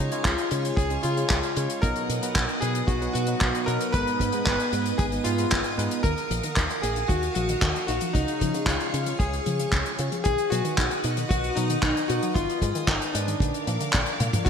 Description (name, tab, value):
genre	italo disco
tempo	114 BPM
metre	4/4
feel	straight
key	unclear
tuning	A4 = 435 Hz
part	bright electric grand piano	melody	0.0-14.5 s	D4 to Cb5	-28 LUFS	left 2 dB	lush chorus, ping-pong delay
part	string machine, full ensemble	sustained chords	0.0-14.5 s	B3 to D#6	-32 LUFS	right 1 dB	ensemble chorus
part	barky tine electric piano	stabs	0.0-6.0, 14.5 s	Ab2 to D#5	-32 LUFS	right 3 dB	overdrive
part	fingered electric bass with an envelope filter	bass	0.0-14.5 s	Ab1 to Db3	-30 LUFS	equal	tube saturation
part	damped 70s drum kit	drums	0.1-14.5 s	cabasa, crash cymbal, handclaps, hi-hat, toms	-29 LUFS	left 1 dB	studio reverb, gated reverb
part	kick drum	drums	0.3-14.5 s	none	-25 LUFS	equal	studio reverb
part	warbly dusty pluck	arpeggios	6.0-14.5 s	Db3 to F#4	-32 LUFS	left 2 dB	chorus, ping-pong delay
room	wet lush hall reverb, RT60 1.9 s, small room ambience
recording	bright 1980s-style digital production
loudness	-22 LUFS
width	side -7 dB against mid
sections	0.0-14.5 A section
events	drum fill 14.2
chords	0.0 Db; 1.8 B; 3.9 Abm; 6.0 Ebmadd9; 8.1 Db; 10.3 B; 12.4 Abm; 13.4 Bb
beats	0.25 0.78 1.30 | 1.83 2.36 2.88 3.41 | 3.94 4.46 4.99 5.52 | 6.04 6.57 7.09 7.62 | 8.15 8.67 9.20 9.73 | 10.25 10.78 11.30 11.83 | 12.36 12.88 13.41 13.94 | 14.46